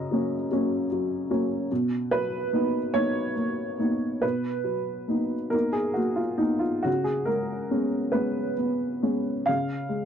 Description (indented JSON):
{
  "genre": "neoclassical minimalist piano",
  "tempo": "46 BPM (dotted quarters)",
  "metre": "6/8",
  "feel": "uneven beats, rubato",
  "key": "unclear",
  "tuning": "A4 = 440 Hz",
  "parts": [
    { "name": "dark upright piano", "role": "solo", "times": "0.0-10.1 s", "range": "F#2 to E#5", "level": "-24 LUFS", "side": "equal", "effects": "none" }
  ],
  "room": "light reverb",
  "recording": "dry, close 1970s-style studio recording",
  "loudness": "-24 LUFS",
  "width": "side -8 dB against mid",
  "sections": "0.0-10.1 A section",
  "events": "none",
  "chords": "0.0 F#; 1.7 Bmaj7; 6.9 C#7",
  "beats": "0.51 | 1.70 2.93 | 4.23 5.54 | 6.87 8.13 | 9.47"
}